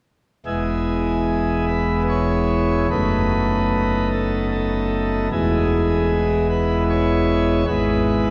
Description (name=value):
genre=classical, chorale-style piece for pipe organ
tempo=75 BPM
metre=3/4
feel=rubato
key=E major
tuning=A4 = 442 Hz
part: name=pipe organ, principal chorus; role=solo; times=0.5-8.3 s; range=E1 to C#5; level=-20 LUFS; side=equal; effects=none
room=wet cathedral reverb, RT60 4.4 s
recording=dark, warm production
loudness=-20 LUFS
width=mono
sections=0.5-8.3 A section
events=none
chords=0.5 E; 2.9 B7/F#; 5.3 E; 7.7 E/G#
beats=| 0.46 1.27 2.09 | 2.91 3.72 4.52 | 5.32 6.11 6.90 | 7.68